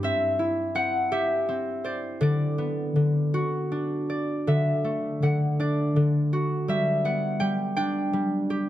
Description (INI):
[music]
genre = children's music, lullaby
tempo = 55 BPM (dotted quarters)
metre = 6/8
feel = rubato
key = G major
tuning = A4 = 440 Hz
[part]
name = concert harp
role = solo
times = 0.0-8.7 s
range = D3 to G5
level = -23 LUFS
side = equal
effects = none
[sound]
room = light reverb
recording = close, detailed microphones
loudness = -23 LUFS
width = side -13 dB against mid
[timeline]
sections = 0.0-8.7 A section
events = none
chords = 0.0 C; 2.2 Bm/D; 3.3 D; 6.7 G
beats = | 0.03 1.12 | 2.22 3.34 | 4.47 5.59 | 6.69 7.76